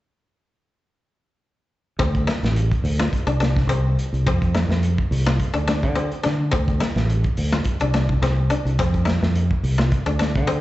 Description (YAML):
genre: afrobeat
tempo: 106 BPM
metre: 4/4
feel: swing 53% on 16ths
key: D minor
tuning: A4 = 440 Hz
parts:
  - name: koto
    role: arpeggios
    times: 2.0-10.6 s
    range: C4 to F4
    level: -26 LUFS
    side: left 4 dB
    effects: slapback echo
  - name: fingered electric bass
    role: bass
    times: 2.0-10.6 s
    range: A1 to D3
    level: -20 LUFS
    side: equal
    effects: none
  - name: crunchy breakbeat drum kit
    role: drums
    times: 2.0-10.6 s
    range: hi-hat, kick drum, snare drum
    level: -24 LUFS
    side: equal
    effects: none
room: small room ambience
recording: live gig heard through the venue's PA, club reverb, nothing above 7.9 kHz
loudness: -18 LUFS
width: side -16 dB against mid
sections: 2.0-10.6 A section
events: none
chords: 2.0 Dm7